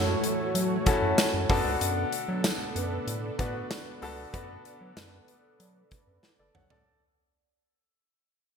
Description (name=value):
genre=1980s-style pop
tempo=95 BPM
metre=4/4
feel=straight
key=B minor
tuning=A4 = 440 Hz
part: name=clear concert grand piano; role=accompaniment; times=0.0-7.0 s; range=B3 to F#5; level=-31 LUFS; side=left 3 dB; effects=none
part: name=string machine, cellos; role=sustained chords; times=0.0-6.8 s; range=E3 to A4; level=-34 LUFS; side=right 1 dB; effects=ensemble chorus
part: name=mellow synth brass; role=stabs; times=0.0-6.5 s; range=F#4 to D5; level=-36 LUFS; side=right 2 dB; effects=chorus, ping-pong delay
part: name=round analog bass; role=bass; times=0.0-6.8 s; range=F#1 to F#3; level=-32 LUFS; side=equal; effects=none
part: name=big rock drum kit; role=drums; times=0.2-6.9 s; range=hi-hat, kick drum, snare drum, tambourine, toms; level=-29 LUFS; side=equal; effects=none
room=moderate lush hall reverb, RT60 2.0 s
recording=bright 1980s-style digital production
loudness=-25 LUFS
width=side -6 dB against mid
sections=0.0-6.9 A section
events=fade-out 0.0-6.9; drum fill 6.2-6.9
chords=0.0 F#m7; 1.5 Bm7